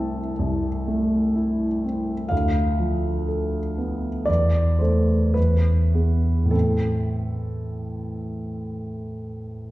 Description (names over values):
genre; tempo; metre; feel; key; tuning
classical, romantic nocturne for solo piano; 49-63 BPM; 4/4; rubato; A minor; A4 = 440 Hz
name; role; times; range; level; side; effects
warm concert grand piano; solo; 0.0-9.7 s; C2 to A5; -21 LUFS; equal; none
room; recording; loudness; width
wet recital hall reverb, RT60 1.5 s; dark, warm production; -20 LUFS; side -17 dB against mid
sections
0.0-9.7 A section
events
none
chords
0.0 Am/C; 2.3 Bm7b5/D; 4.3 Am/E; 5.4 E; 6.5 Am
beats
0.38 1.36 | 2.32 3.28 4.28 5.37 | 6.54 7.74 8.94